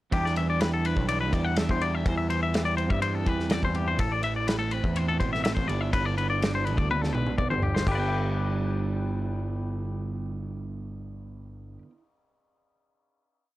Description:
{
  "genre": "math rock and midwest emo",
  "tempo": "124 BPM",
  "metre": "4/4",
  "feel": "straight",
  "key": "G major",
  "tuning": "A4 = 440 Hz",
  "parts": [
    { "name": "twelve-string electric guitar", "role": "accompaniment", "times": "0.1-12.0 s", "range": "E2 to G4", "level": "-32 LUFS", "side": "right 5 dB", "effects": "none" },
    { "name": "twangy electric guitar", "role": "arpeggios", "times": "0.1-11.9 s", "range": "G4 to G5", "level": "-30 LUFS", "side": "left 5 dB", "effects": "tremolo" },
    { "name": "overdriven picked electric bass", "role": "bass", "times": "0.1-11.8 s", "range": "G1 to G2", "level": "-29 LUFS", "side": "equal", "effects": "none" },
    { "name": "loose indie drum kit", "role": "drums", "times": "0.1-8.0 s", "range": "crash cymbal, kick drum, ride cymbal, snare drum, toms", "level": "-30 LUFS", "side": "equal", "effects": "none" }
  ],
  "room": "little or no reverb",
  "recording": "cassette tape",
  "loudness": "-24 LUFS",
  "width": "side -16 dB against mid",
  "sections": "0.1-7.9 A section; 7.9-11.7 final chord",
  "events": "drum fill 6.9-7.9",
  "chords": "0.1 Em7; 2.1 C/E; 4.0 Am; 5.7 G6",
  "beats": "| 0.12 0.61 1.09 1.58 | 2.06 2.55 3.03 3.51 | 3.99 4.48 4.96 5.44 | 5.92 6.41 6.89 7.38 | 7.86 8.34 8.83 9.31 | 9.80 10.29 10.77 11.26"
}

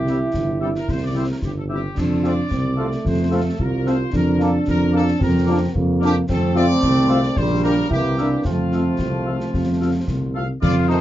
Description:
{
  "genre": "military-style march for wind band",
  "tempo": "111 BPM",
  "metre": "2/4",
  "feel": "straight",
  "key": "F major",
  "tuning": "A4 = 440 Hz",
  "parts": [
    { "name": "bright trumpet section", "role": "melody", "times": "0.0-11.0 s", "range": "F4 to F5", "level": "-29 LUFS", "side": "left 1 dB", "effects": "none" },
    { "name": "warm euphonium", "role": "second line", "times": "0.0-10.3 s", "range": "A3 to F4", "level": "-23 LUFS", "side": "right 2 dB", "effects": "none" },
    { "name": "warm tuba", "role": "bass", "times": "0.0-11.0 s", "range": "G1 to F2", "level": "-20 LUFS", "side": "right 1 dB", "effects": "none" },
    { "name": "mellow woodwind section", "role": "second line", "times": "0.1-11.0 s", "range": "Eb4 to F5", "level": "-30 LUFS", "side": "left 2 dB", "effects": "none" },
    { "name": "clear French horn section", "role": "accompaniment", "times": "0.1-11.0 s", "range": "F3 to G4", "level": "-26 LUFS", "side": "left 2 dB", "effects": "none" },
    { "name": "bright trombone section", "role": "sustained chords", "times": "0.1-11.0 s", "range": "Eb3 to E4", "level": "-27 LUFS", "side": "equal", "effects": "none" },
    { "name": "concert snare drum, concert bass drum and clash cymbals", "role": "drums", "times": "0.1-11.0 s", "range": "none", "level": "-26 LUFS", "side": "left 1 dB", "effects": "none" }
  ],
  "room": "wet booth ambience, RT60 0.2 s",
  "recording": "heard from further back in the room, nothing above 7.6 kHz",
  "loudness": "-17 LUFS",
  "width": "side -13 dB against mid",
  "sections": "0.0-10.6 A section",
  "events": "none",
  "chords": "0.0 C; 2.0 F; 4.1 Bb/F; 6.3 F; 7.4 Gm/Bb; 7.9 C7; 8.5 F",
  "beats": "0.34 | 0.88 1.42 | 1.96 2.50 | 3.04 3.58 | 4.12 4.67 | 5.21 5.75 | 6.29 6.83 | 7.37 7.91 | 8.46 9.00 | 9.54 10.08 | 10.62"
}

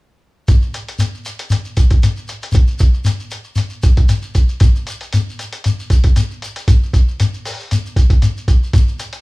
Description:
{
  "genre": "afrobeat",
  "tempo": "116 BPM",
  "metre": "4/4",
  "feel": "swing 53% on 16ths",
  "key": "none",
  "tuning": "none",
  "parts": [
    { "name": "lo-fi sampler-style drum kit", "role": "drums", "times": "0.5-9.2 s", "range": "hi-hat, kick drum", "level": "-13 LUFS", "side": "equal", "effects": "none" },
    { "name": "shekere", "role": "percussion", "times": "0.5-9.2 s", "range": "none", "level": "-19 LUFS", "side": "left 2 dB", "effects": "none" }
  ],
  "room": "light reverb",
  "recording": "band playing live in one room",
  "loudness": "-13 LUFS",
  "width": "side -22 dB against mid",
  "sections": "0.5-9.2 A section",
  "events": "none",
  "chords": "none",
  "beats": "| 0.49 1.00 1.52 2.04 | 2.55 3.07 3.58 4.10 | 4.61 5.13 5.65 6.16 | 6.68 7.19 7.71 8.22 | 8.74"
}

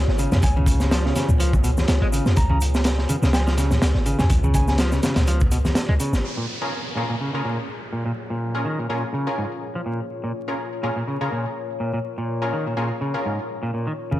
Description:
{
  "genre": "breakbeat, breaks",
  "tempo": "124 BPM",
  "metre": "4/4",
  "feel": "swing 55% on 16ths",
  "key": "unclear",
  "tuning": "A4 = 440 Hz",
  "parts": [
    { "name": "deep dark ambient pad", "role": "sustained chords", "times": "0.0-14.2 s", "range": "Bb3 to Db5", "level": "-32 LUFS", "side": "left 1 dB", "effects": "chorus, built-in reverb, sidechain pumping" },
    { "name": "warm 808-style bass", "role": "bass", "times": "0.0-6.2 s", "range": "Ab1 to F2", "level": "-20 LUFS", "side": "equal", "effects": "none" },
    { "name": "crunchy breakbeat drum kit", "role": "drums", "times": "0.1-6.2 s", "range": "hi-hat, kick drum, snare drum", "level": "-22 LUFS", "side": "equal", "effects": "low-pass filter on kick, low-pass filter on hats, low-pass filter on snare, low-pass filter on room" },
    { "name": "semi-hollow electric guitar", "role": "riff", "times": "0.2-14.2 s", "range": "Ab2 to Ab3", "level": "-26 LUFS", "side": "equal", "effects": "overdrive, vintage 12-bit sampler grit, low-pass filter, ping-pong delay" },
    { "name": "shaker", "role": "drums", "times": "0.2-6.2 s", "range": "none", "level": "-38 LUFS", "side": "right 1 dB", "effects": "low-pass filter on perc" },
    { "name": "congas", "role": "percussion", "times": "0.3-5.7, 14.1-14.2 s", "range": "none", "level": "-28 LUFS", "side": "left 1 dB", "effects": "none" },
    { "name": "soft synth bell", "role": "melody", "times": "0.4-4.8 s", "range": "Ab5 to Bb5", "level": "-32 LUFS", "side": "equal", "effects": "chorus, small speaker sound, ping-pong delay" },
    { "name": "downlifter", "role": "sound effects", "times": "6.2-10.1 s", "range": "none", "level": "-34 LUFS", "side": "right 1 dB", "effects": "none" },
    { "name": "orchestra-hit-like synth stab", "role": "stabs", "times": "6.6-14.0 s", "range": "Db4 to Bb4", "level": "-29 LUFS", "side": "left 1 dB", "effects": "built-in reverb, ping-pong delay" }
  ],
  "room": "light reverb, studio reverb",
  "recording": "vinyl crackle",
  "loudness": "-20 LUFS",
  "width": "side -15 dB against mid",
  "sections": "0.0-6.2 A section; 6.2-14.2 B section",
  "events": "none",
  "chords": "0.0 Db7; 6.2 Bbm7",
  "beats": "| 0.43 0.92 1.40 1.89 | 2.37 2.85 3.34 3.82 | 4.30 4.79 5.27 5.76 | 6.24 6.72 7.21 7.69 | 8.18 8.66 9.14 9.63 | 10.11 10.60 11.08 11.56 | 12.05 12.53 13.01 13.50 | 13.98"
}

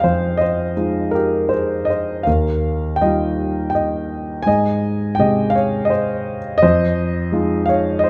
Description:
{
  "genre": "classical, lyrical solo piano",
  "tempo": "82 BPM",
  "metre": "3/4",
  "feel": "uneven beats, rubato",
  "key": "unclear",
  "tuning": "A4 = 438 Hz",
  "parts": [
    { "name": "dark concert grand piano", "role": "solo", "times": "0.0-8.1 s", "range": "Eb2 to Ab5", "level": "-18 LUFS", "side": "equal", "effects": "none" }
  ],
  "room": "light reverb",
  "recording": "dark, warm production",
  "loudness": "-18 LUFS",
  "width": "mono",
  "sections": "0.0-8.1 A section",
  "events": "none",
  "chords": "0.0 Fm7; 2.3 Ebadd9; 4.5 Abmaj7; 6.6 Fm7",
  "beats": "| 0.04 0.78 1.52 | 2.27 3.02 3.75 | 4.47 5.20 5.92 | 6.63 7.33 8.04"
}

